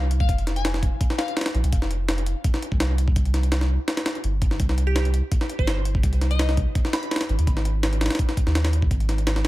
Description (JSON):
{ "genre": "drum and bass, jungle", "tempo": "167 BPM", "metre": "4/4", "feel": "straight", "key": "F minor", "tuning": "A4 = 441 Hz", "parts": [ { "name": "glassy wavetable pluck", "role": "melody", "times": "0.0-1.3, 4.9-7.3 s", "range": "G4 to Cb6", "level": "-33 LUFS", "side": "left 2 dB", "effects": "chorus, dub echo" }, { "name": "soft dub sub bass", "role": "bass", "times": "0.0-9.5 s", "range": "F1 to Eb2", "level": "-22 LUFS", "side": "equal", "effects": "none" }, { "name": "jungle sampler-style drum kit", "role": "drums", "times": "0.1-9.5 s", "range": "hi-hat, kick drum, snare drum", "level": "-23 LUFS", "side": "equal", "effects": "none" } ], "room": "little or no reverb", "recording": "none", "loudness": "-20 LUFS", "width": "side -17 dB against mid", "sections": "0.0-9.5 A section", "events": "none", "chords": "0.0 F5; 3.2 C5; 6.8 Ab5" }